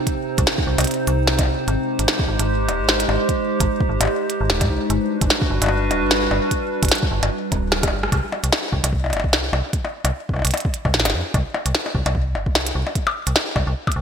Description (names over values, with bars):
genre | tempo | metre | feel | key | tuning
IDM | 149 BPM | 4/4 | swing 56% on 16ths | unclear | A4 = 441 Hz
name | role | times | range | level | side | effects
warbly tape-like pad | sustained chords | 0.0-8.1 s | C3 to C5 | -22 LUFS | right 1 dB | chorus, built-in reverb, vintage 12-bit sampler grit, sidechain pumping
electronic kick drum | drums | 0.1-13.9 s | none | -23 LUFS | equal | overdrive
glitchy drum kit | drums | 0.1-14.0 s | hi-hat, percussion blips, rim click, snare drum | -21 LUFS | equal | overdrive, gated reverb, ping-pong delay
metallic FM bass | bass | 0.4-14.0 s | D1 to Ab2 | -22 LUFS | equal | none
room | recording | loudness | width
moderate lush hall reverb, RT60 1.7 s | bright 1980s-style digital production | -18 LUFS | side -7 dB against mid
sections
0.0-8.1 A section; 8.1-14.0 B section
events
drum fill 7.5-8.1; band accent 8.0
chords
0.0 Cm; 1.7 Abmaj7; 4.9 Gmaj7; 8.1 C5